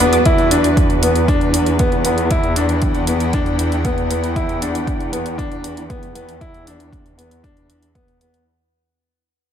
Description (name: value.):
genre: piano and strings electronica.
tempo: 117 BPM.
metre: 4/4.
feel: straight.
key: E minor.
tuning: A4 = 438 Hz.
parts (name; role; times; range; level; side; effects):
granular cloud pad; sustained chords; 0.0-8.5 s; D4 to G5; -26 LUFS; right 1 dB; built-in reverb, sidechain pumping.
clear grand piano; riff; 0.0-8.4 s; B3 to E4; -19 LUFS; equal; tape echo.
dark studio cello section; bass; 0.0-8.4 s; E2; -20 LUFS; equal; sidechain pumping.
electronic hi-hat; drums; 0.0-8.4 s; none; -24 LUFS; right 1 dB; overdrive, studio reverb.
electronic kick drum; drums; 0.3-8.1 s; none; -20 LUFS; equal; overdrive, studio reverb.
room: light reverb, small room ambience.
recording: none.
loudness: -14 LUFS.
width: side -9 dB against mid.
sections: 0.3-8.5 A section.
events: fade-out 0.3-8.5; filter sweep on ambient pad 0.3-8.5.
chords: 0.3 Em7.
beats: | 0.26 0.77 1.28 1.80 | 2.31 2.82 3.33 3.85 | 4.36 4.87 5.38 5.90 | 6.41 6.92 7.44 7.95.